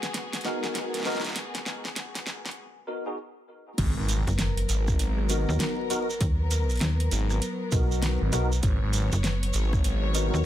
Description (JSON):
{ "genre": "glitch hop", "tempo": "99 BPM", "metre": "4/4", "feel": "swing 62% on 16ths", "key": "G# minor", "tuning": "A4 = 440 Hz", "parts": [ { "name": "dark chamber string section", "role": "sustained chords", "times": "0.0-10.5 s", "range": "F#3 to C#5", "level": "-35 LUFS", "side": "left 2 dB", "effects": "sidechain pumping" }, { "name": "pop drum kit", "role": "drums", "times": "0.0-10.3 s", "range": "crash cymbal, hi-hat, rim click, snare drum", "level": "-32 LUFS", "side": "equal", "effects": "studio reverb" }, { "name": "bright tine electric piano", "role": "stabs", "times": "0.4-10.5 s", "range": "B3 to A#4", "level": "-32 LUFS", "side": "left 1 dB", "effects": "ensemble chorus, sidechain pumping, tape echo" }, { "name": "phased detuned saw bass", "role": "bass", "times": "3.8-10.3 s", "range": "G#1", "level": "-26 LUFS", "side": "equal", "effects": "phaser, tube saturation" }, { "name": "electronic kick drum", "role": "drums", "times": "3.8-9.8 s", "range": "none", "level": "-26 LUFS", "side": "equal", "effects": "studio reverb" }, { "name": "shekere", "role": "percussion", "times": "3.8-10.4 s", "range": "none", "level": "-36 LUFS", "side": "right 6 dB", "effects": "none" }, { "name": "impact", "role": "sound effects", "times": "3.8-6.2 s", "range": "none", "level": "-35 LUFS", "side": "equal", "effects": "none" }, { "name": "slap-like FM bass", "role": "bass", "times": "4.3-10.4 s", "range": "F#1 to D#2", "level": "-25 LUFS", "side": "equal", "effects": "tube saturation" } ], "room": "digital ambience", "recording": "high-pass filter", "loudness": "-24 LUFS", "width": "side -12 dB against mid", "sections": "0.0-3.8 A section; 3.8-10.5 B section", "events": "build-up 0.0-3.8; drum fill 0.0-2.6; filter sweep 0.0-3.8; break 2.6-3.8; drop 3.8-10.5; impact 3.8-6.2", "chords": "0.0 G#m9", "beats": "0.15 0.75 | 1.36 1.96 2.57 3.18 | 3.78 4.39 4.99 5.60 | 6.21 6.81 7.42 8.03 | 8.63 9.24 9.84 10.45" }